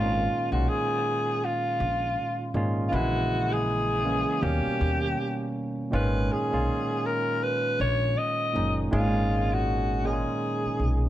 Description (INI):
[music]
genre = R&B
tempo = 80 BPM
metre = 4/4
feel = swing 60% on 16ths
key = G# dorian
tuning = A4 = 440 Hz
[part]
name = growling alto saxophone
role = melody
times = 0.0-11.1 s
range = E#4 to D#5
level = -28 LUFS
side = left 1 dB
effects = slapback echo
[part]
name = barky tine electric piano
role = accompaniment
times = 0.0-11.1 s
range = A#2 to G#4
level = -29 LUFS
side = right 2 dB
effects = overdrive
[part]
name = upright bass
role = bass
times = 0.0-11.1 s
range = F#1 to D#2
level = -27 LUFS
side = equal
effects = none
[sound]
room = small room reverb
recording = none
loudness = -24 LUFS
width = side -13 dB against mid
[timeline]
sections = 0.0-11.1 A section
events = none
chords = 0.0 G#sus2; 2.9 A#m7b5; 4.4 D#7b13; 5.9 G#sus2